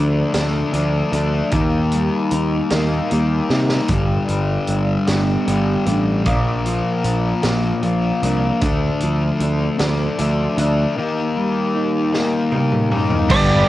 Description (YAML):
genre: quiet-loud alternative rock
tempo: 51 BPM (dotted quarters)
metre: 6/8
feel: straight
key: unclear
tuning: A4 = 441 Hz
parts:
  - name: mellow electric guitar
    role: arpeggios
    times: 0.0-13.3 s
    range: G2 to Eb4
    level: -23 LUFS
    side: right 2 dB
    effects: phaser, cassette tape
  - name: fuzz guitar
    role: riff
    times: 0.0-13.7 s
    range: G2 to Eb4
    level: -21 LUFS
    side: left 4 dB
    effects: distortion, cassette tape
  - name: growling fingered electric bass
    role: bass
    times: 0.0-13.6 s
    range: G1 to C3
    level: -20 LUFS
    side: right 1 dB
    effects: overdrive
  - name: raw garage drum kit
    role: drums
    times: 0.3-13.5 s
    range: crash cymbal, hi-hat, kick drum, snare drum, toms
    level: -23 LUFS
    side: right 1 dB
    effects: cassette tape
  - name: lightly driven lead guitar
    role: melody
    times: 13.3-13.7 s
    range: D5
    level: -17 LUFS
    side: equal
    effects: cassette tape
  - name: cranked stack guitar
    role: riff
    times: 13.3-13.7 s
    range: G2 to G4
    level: -19 LUFS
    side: right 5 dB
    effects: overdrive, cassette tape
room: light reverb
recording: home recording on cassette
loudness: -16 LUFS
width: side -15 dB against mid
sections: 0.0-13.3 A section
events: drum fill 3.5-3.9, 12.1-13.3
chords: 0.0 Dm; 1.5 Eb; 3.9 G; 6.3 Bb; 8.6 Dm; 11.0 Eb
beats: 0.35 | 1.53 2.72 | 3.90 5.08 | 6.27 7.45 | 8.62 9.80 | 10.97 12.14 | 13.31